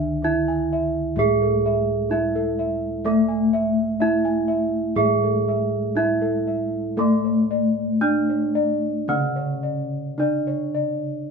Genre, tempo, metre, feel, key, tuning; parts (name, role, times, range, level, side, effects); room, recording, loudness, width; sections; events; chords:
gamelan; 52-64 BPM; 4/4; straight; C# pelog; A4 = 440 Hz
gamelan-type bronze metallophone; melody; 0.0-11.3 s; A3 to G#4; -22 LUFS; right 4 dB
gamelan-type bronze metallophone; accompaniment; 0.0-11.3 s; C#3 to A3; -27 LUFS; left 4 dB
gamelan-type bossed gongs; arpeggios; 0.0-11.1 s; A4 to G#5; -26 LUFS; left 3 dB
gamelan-type bossed gongs; bass; 0.0-11.3 s; C#2 to A4; -30 LUFS; left 1 dB
wet studio reverb, RT60 0.6 s; band playing live in one room; -19 LUFS; side -5 dB against mid
0.0-11.3 A section